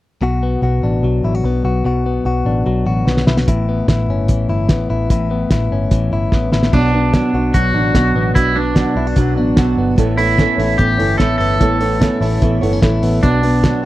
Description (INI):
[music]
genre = jangly indie pop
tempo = 148 BPM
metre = 4/4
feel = straight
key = B minor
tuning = A4 = 441 Hz
[part]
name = direct-recorded clean electric guitar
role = arpeggios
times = 0.2-13.9 s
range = A2 to F#4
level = -19 LUFS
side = left 3 dB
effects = none
[part]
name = vintage muted picked electric bass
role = bass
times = 0.2-13.7 s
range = G1 to B1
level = -18 LUFS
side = equal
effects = none
[part]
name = cloth-damped thuddy drum kit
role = drums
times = 3.1-13.7 s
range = crash cymbal, hi-hat, kick drum, snare drum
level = -16 LUFS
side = equal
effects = none
[part]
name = electric guitar at the edge of break-up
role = melody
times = 6.7-13.9 s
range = D4 to A4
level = -19 LUFS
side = right 2 dB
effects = tape echo
[part]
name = fingerpicked steel-string acoustic guitar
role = accompaniment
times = 6.7-13.9 s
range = B2 to C#5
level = -19 LUFS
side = right 4 dB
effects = none
[sound]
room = light reverb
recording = dry, close 1970s-style studio recording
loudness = -13 LUFS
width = side -16 dB against mid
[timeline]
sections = 0.2-6.7 A section; 6.7-13.9 B section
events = drum fill 3.1-3.5, 6.3-6.7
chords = 0.2 Bm; 3.5 Aadd9; 6.7 Bm; 10.0 Aadd9; 13.2 Bm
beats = | 0.22 0.63 1.03 1.44 | 1.85 2.25 2.66 3.07 | 3.48 3.88 4.29 4.70 | 5.10 5.51 5.91 6.32 | 6.73 7.13 7.54 7.95 | 8.35 8.76 9.17 9.57 | 9.98 10.38 10.79 11.20 | 11.60 12.01 12.42 12.82 | 13.23 13.64